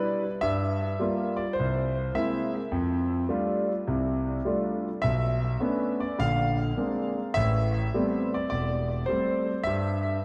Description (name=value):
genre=solo jazz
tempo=104 BPM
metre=4/4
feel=swing 68% on 8ths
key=unclear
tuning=A4 = 439 Hz
part: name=clear concert grand piano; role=solo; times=0.0-10.2 s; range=E1 to F5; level=-28 LUFS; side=equal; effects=analog chorus, diffuse ambient delay
room=wet lush hall reverb, RT60 2.0 s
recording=dreamy mix soaked in reverb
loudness=-28 LUFS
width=mono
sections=0.0-10.2 A section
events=none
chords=0.4 Gm7; 1.6 Caug7; 2.7 F69; 5.0 Bm9; 6.2 Bb9; 7.3 Am9; 9.7 N.C.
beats=| 0.41 0.99 1.57 2.15 | 2.73 3.31 3.88 4.46 | 5.04 5.62 6.20 6.77 | 7.35 7.93 8.51 9.08 | 9.66